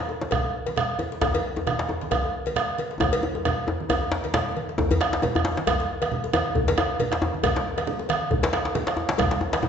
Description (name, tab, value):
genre	west african traditional, West African drum ensemble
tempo	135 BPM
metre	4/4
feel	swing 56% on 16ths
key	none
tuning	none
part	bombo	percussion	0.0-9.6 s	none	-26 LUFS	right 2 dB	none
part	djembe	percussion	0.1-9.5 s	none	-33 LUFS	left 5 dB	none
part	congas	percussion	0.2-9.7 s	none	-31 LUFS	right 3 dB	none
part	djembe	percussion	0.2-9.7 s	none	-27 LUFS	left 2 dB	none
part	cowbell	percussion	0.3-9.6 s	none	-31 LUFS	left 2 dB	none
room	wet recital hall reverb, RT60 1.2 s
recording	recorded in a church or concert hall, nothing above 7.9 kHz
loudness	-22 LUFS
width	side -7 dB against mid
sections	0.0-4.8 A section; 4.8-9.7 B section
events	speeding up 0.0-9.7; drum fill 3.0-4.8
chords	none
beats	0.32 0.77 | 1.22 1.67 2.11 2.56 | 3.01 3.45 3.90 4.34 | 4.79 5.23 5.67 6.12 | 6.56 7.00 7.44 7.88 | 8.31 8.75 9.19 9.63